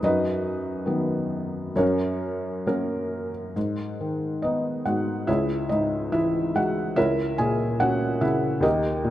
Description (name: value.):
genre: classical, lyrical solo piano.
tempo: 65-73 BPM.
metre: 4/4.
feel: rubato.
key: G# minor from 3.6 s.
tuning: A4 = 441 Hz.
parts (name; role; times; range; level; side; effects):
felt-muted upright piano; solo; 0.0-9.1 s; C#2 to G#5; -23 LUFS; equal; none.
room: moderate scoring stage reverb, RT60 1.6 s.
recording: none.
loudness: -23 LUFS.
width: side -13 dB against mid.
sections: 0.0-3.6 A section; 3.6-9.1 B section.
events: none.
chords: 0.0 B/F#; 1.8 F#; 3.6 G#m7; 5.3 C#m; 7.0 A#dim/C#.